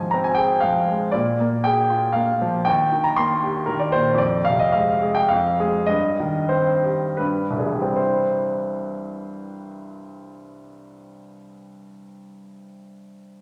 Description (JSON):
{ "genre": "classical, romantic character piece for solo piano", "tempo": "74-120 BPM", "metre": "3/4", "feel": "rubato", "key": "unclear", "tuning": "A4 = 440 Hz", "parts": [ { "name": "clear baby grand piano", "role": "solo", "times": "0.0-13.4 s", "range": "C2 to C6", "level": "-22 LUFS", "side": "equal", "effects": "none" } ], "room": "wet recital hall reverb, RT60 1.8 s", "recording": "none", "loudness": "-21 LUFS", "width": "mono", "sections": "0.0-8.0 A section; 8.0-12.6 B section", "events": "slowing down 3.4-8.0", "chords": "0.0 Fm/Ab; 1.1 Bb7; 2.7 Eb; 4.2 Fm; 5.9 Cm/G; 7.2 G; 8.0 C" }